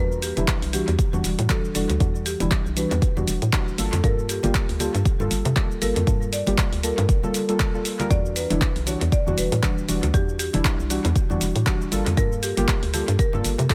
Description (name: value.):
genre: deep house.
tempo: 118 BPM.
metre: 4/4.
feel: swing 57% on 16ths.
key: unclear.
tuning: A4 = 442 Hz.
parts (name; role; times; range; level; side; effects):
marimba with medium hard mallets; melody; 0.0-13.7 s; F#4 to D5; -33 LUFS; equal; dub echo.
deep mellow chord stab; stabs; 0.0-13.7 s; E3 to Bb4; -29 LUFS; equal; chorus, sidechain pumping, dub echo.
hollow knocking FM bass; bass; 0.0-13.7 s; E1 to C3; -27 LUFS; equal; sidechain pumping.
punchy analog drum machine; drums; 0.1-13.7 s; cabasa, handclaps, hi-hat; -31 LUFS; equal; dub echo.
congas; percussion; 0.4-13.7 s; none; -36 LUFS; equal; none.
electronic kick drum; drums; 0.5-13.7 s; none; -25 LUFS; equal; overdrive.
room: digital ambience.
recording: echo-heavy mix.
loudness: -22 LUFS.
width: mono.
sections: 0.0-13.7 A section.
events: none.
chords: 0.0 Em9; 3.8 Gm9; 8.1 Em9; 11.9 Gm9.